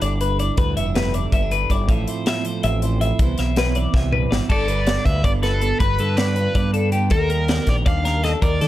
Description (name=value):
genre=math rock and midwest emo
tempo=321 BPM (eighths)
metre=7/8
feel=straight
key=unclear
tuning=A4 = 439 Hz
part: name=twelve-string electric guitar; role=accompaniment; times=0.0-8.7 s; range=G2 to G4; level=-26 LUFS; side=right 5 dB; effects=spring reverb
part: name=twelve-string electric guitar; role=arpeggios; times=0.0-8.7 s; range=G4 to E5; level=-25 LUFS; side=left 4 dB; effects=plate reverb, tape echo
part: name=growling fingered electric bass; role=bass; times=0.0-8.7 s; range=F1 to Eb3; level=-22 LUFS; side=equal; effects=overdrive
part: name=crisp fusion drum kit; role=drums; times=0.0-8.7 s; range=crash cymbal, hi-hat, kick drum, snare drum, toms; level=-22 LUFS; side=equal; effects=none
part: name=overdriven electric guitar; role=melody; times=4.5-8.7 s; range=A4 to F5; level=-25 LUFS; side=right 1 dB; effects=none
room=little or no reverb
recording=dark, warm production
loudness=-17 LUFS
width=side -14 dB against mid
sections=0.0-4.5 A section; 4.5-8.7 B section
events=drum fill 3.9-4.5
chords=0.0 G6; 1.9 Fmaj7/A; 3.2 Cmaj7; 4.5 G9; 7.1 Ebmaj7